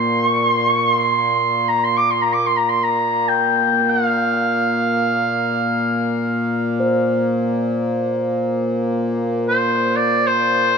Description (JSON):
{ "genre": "world meditative, free-time meditation music", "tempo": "free time", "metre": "none", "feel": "none", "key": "unclear", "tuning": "A4 = 441 Hz", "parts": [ { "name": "warm oboe", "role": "melody", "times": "0.0-10.8 s", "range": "C5 to D6", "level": "-17 LUFS", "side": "right 1 dB", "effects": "analog delay" }, { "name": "pedal harmonium", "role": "drone", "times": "0.0-10.8 s", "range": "Bb2 to Bb3", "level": "-21 LUFS", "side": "left 1 dB", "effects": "none" }, { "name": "bronze singing bowl", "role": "texture", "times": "6.8-10.8 s", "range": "C5", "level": "-26 LUFS", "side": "right 1 dB", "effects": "stereo widening" } ], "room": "moderate plate reverb, RT60 2.6 s", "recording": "echo-heavy mix", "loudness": "-16 LUFS", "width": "side -6 dB against mid", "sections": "0.0-10.8 A section", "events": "none", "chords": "none", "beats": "free time" }